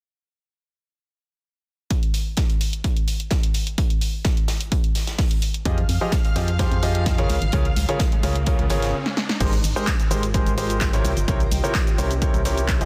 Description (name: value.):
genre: piano house.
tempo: 128 BPM.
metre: 4/4.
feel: straight.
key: Ab major.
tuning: A4 = 440 Hz.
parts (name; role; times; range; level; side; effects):
electronic kick drum; drums; 1.9-12.8 s; none; -24 LUFS; equal; studio reverb.
modern studio drum kit; drums; 1.9-8.9 s; hi-hat, snare drum; -38 LUFS; equal; high-pass filter on hats, studio reverb, high-pass filter on snare, high-pass filter on room.
punchy analog drum machine; drums; 1.9-12.9 s; crash cymbal, handclaps, hi-hat, shaker, snare drum; -31 LUFS; equal; studio reverb.
string machine, violins; sustained chords; 5.7-8.9 s; F5 to F6; -37 LUFS; equal; ensemble chorus, sidechain pumping.
clear concert grand piano; riff; 5.7-12.9 s; C3 to Eb5; -28 LUFS; equal; sidechain pumping, delay.
organ-like FM bass; bass; 5.7-12.9 s; G1 to F2; -26 LUFS; equal; sidechain pumping.
riser; sound effects; 7.5-9.4 s; none; -38 LUFS; equal; none.
granular cloud pad; texture; 10.2-12.9 s; Db4 to G5; -35 LUFS; equal; built-in reverb, sidechain pumping.
room: studio reverb.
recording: dense, heavily limited modern master.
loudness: -22 LUFS.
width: mono.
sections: 1.9-9.4 A section; 9.4-12.9 B section.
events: riser 7.5-9.4; stop 8.9-9.4; drum fill 9.1-9.4.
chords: 1.9 N.C.; 5.4 Fm9; 7.3 Db6; 9.4 Abmaj9; 11.0 C7b9.